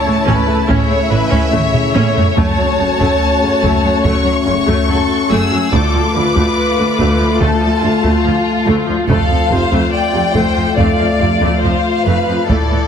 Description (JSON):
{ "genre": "cinematic, epic orchestral film score", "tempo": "71 BPM", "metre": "4/4", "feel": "straight", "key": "unclear", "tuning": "A4 = 440 Hz", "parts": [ { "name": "warm symphonic violin section", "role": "melody", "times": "0.0-12.9 s", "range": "D5 to E6", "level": "-20 LUFS", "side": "left 3 dB", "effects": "none" }, { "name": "rich symphonic violin section", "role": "second line", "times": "0.0-12.9 s", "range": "F4 to D5", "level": "-19 LUFS", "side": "left 2 dB", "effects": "none" }, { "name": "clear symphonic viola section", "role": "accompaniment", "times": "0.0-12.9 s", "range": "C3 to F#4", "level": "-20 LUFS", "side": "equal", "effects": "none" }, { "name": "mellow French horn section", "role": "sustained chords", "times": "0.0-12.9 s", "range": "C#3 to F4", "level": "-19 LUFS", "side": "left 4 dB", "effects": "none" }, { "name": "rich symphonic cello section", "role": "bass", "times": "0.1-12.8 s", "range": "D2 to A2", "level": "-20 LUFS", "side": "right 3 dB", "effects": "none" }, { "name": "warm studio double bass section", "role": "bass", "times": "0.3-12.6 s", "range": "F1 to D2", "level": "-21 LUFS", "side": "right 4 dB", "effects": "none" }, { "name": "taiko ensemble", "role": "drums", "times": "0.3-12.9 s", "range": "none", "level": "-18 LUFS", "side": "equal", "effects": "none" }, { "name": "timpani", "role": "percussion", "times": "2.4-3.6 s", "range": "F#2", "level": "-26 LUFS", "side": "equal", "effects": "none" } ], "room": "moderate scoring stage reverb, RT60 1.9 s", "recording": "heavily compressed radio sound", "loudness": "-11 LUFS", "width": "side -7 dB against mid", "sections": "0.0-12.9 A section", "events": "drum fill 1.5-2.4", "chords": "0.0 A; 2.4 F#m; 5.7 Dm; 9.1 F" }